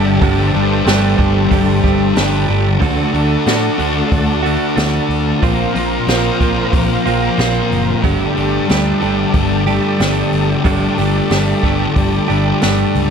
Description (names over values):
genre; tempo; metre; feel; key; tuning
rock, shoegaze and dream pop; 92 BPM; 4/4; straight; unclear; A4 = 443 Hz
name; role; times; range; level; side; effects
analog string pad; sustained chords; 0.0-13.1 s; F4 to Bb5; -24 LUFS; right 2 dB; ensemble chorus
direct-recorded clean electric guitar; riff; 0.0-13.1 s; Bb2 to G4; -19 LUFS; right 14 dB; reverse reverb
thick fuzz guitar; riff; 0.0-13.1 s; G2 to D4; -17 LUFS; left 7 dB; distortion, wide subtle chorus
fingered electric bass; bass; 0.0-13.1 s; F#1 to A2; -19 LUFS; equal; none
jazz brush drum kit; drums; 0.2-13.1 s; hi-hat, kick drum, snare drum; -18 LUFS; equal; none
room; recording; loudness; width
light reverb; none; -12 LUFS; side -7 dB against mid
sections
0.0-2.8 A section; 2.8-13.1 B section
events
none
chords
0.0 Gsus2; 2.8 D; 5.4 Bbsus2; 8.0 Gsus2